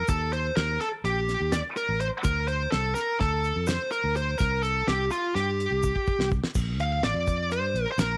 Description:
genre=progressive instrumental, band music in an uneven meter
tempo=250 BPM (eighths)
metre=9/8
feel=straight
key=Bb major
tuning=A4 = 440 Hz
part: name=high-gain lead guitar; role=melody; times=0.0-8.2 s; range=F4 to F5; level=-29 LUFS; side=equal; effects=distortion, cassette tape
part: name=fretless electric bass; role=bass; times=0.0-8.2 s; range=A1 to G2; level=-32 LUFS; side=equal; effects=none
part: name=damped 70s drum kit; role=drums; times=0.1-8.1 s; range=crash cymbal, hi-hat, kick drum, snare drum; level=-32 LUFS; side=equal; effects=cassette tape
part: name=egg shaker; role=percussion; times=0.1-8.2 s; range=none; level=-47 LUFS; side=equal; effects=none
room=light reverb, small room reverb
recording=home recording on cassette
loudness=-27 LUFS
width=mono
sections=0.0-6.6 A section; 6.6-8.2 B section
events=drum fill 5.8-6.6; lead electric guitar solo 6.6-8.2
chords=0.1 Eb; 2.2 D7(no3); 4.4 C5; 6.6 Bb

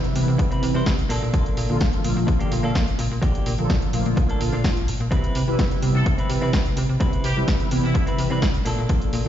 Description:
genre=filtered disco house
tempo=127 BPM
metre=4/4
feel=straight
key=C major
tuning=A4 = 438 Hz
part: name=mellow synth brass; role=accompaniment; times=0.0-9.3 s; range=C3 to B4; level=-25 LUFS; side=equal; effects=chorus, phaser, sidechain pumping, low-pass filter
part: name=clean electric guitar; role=riff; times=0.0-9.3 s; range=Bb3 to C5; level=-31 LUFS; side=right 1 dB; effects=sidechain pumping, low-pass filter
part: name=punchy analog drum machine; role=drums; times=0.0-9.2 s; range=hi-hat, snare drum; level=-30 LUFS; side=left 1 dB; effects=sidechain pumping on hats
part: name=slap-like FM bass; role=bass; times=0.2-9.3 s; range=Bb1 to C3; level=-25 LUFS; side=equal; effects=sidechain pumping, low-pass filter
part: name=electronic kick drum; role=drums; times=0.4-9.0 s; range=none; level=-23 LUFS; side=equal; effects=none
part: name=muted trumpet section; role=melody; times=5.9-8.0 s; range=E4 to A4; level=-33 LUFS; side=equal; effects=sidechain pumping, low-pass filter, ping-pong delay
room=light reverb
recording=played on a big sound system in a bare room, large studio reverb, nothing above 7.6 kHz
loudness=-19 LUFS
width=side -10 dB against mid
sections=0.0-9.3 A section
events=filter sweep 0.0-9.3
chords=0.0 Cmaj7; 1.1 Bbmaj7; 5.1 Cmaj7; 8.7 Bbmaj7

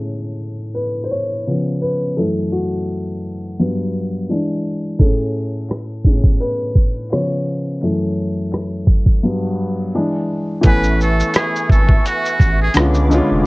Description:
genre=lo-fi hip hop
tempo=85 BPM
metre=4/4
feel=swing 55% on 16ths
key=A major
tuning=A4 = 438 Hz
part: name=warm upright piano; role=accompaniment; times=0.0-13.5 s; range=F#2 to G#5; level=-19 LUFS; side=left 1 dB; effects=cassette tape
part: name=lo-fi sampler-style drum kit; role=drums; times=5.0-13.3 s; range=hi-hat, kick drum, rim click, shaker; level=-14 LUFS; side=equal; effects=none
part: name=hollow soft pad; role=sustained chords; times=10.6-13.5 s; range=B4 to D6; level=-26 LUFS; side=right 2 dB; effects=ensemble chorus
part: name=saturated sub bass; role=bass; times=10.6-13.4 s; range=E#1 to C#2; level=-17 LUFS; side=equal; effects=none
part: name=trumpet with metal mute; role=melody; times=10.7-12.7 s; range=F#4 to B4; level=-20 LUFS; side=right 1 dB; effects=none
room=light reverb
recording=worn, warbling old tape, cassette tape, warbly pitch drift, low-pass filter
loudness=-15 LUFS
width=side -23 dB against mid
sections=0.0-10.6 A section; 10.6-13.5 B section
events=upright piano solo 0.0-10.6; filter sweep 0.0-10.6; break 9.2-10.6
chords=0.0 Amaj7; 1.5 C#7; 2.2 F#m7; 3.6 Gmaj7; 4.3 E7; 5.0 Amaj9; 7.1 C#7; 7.8 F#m7; 9.2 Gmaj7; 9.9 E7; 10.6 Amaj9; 12.8 C#7b9

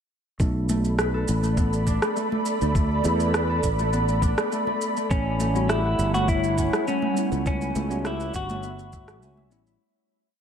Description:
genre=sunset chillout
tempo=102 BPM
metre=4/4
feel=straight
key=B minor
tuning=A4 = 440 Hz
part: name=ethereal airy pad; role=sustained chords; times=0.9-9.8 s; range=G3 to B5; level=-28 LUFS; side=equal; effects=ensemble chorus, built-in reverb
part: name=Celtic harp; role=arpeggios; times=0.4-10.4 s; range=A3 to B4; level=-32 LUFS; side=equal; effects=ping-pong delay
part: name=sustaining fretless electric bass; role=bass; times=0.4-9.8 s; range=G1 to E2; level=-25 LUFS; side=equal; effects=analog chorus
part: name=electronic kick drum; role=drums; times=0.4-9.1 s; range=none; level=-25 LUFS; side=equal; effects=none
part: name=electronic shaker and rim click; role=drums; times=0.4-9.8 s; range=none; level=-30 LUFS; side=right 1 dB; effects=overdrive
part: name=congas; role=percussion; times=0.7-9.5 s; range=none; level=-33 LUFS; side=equal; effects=none
part: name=clean electric guitar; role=melody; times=5.1-9.5 s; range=C#4 to F#4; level=-27 LUFS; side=equal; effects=ping-pong delay
part: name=bell-like tine electric piano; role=accompaniment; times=5.5-9.8 s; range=G3 to F#4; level=-32 LUFS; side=moving between left 5 dB and right 8 dB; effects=auto-pan
room=light reverb, digital ambience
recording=none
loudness=-21 LUFS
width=side -8 dB against mid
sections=0.4-9.8 groove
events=fade-out 6.7-9.8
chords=0.4 Bm7; 5.1 A13

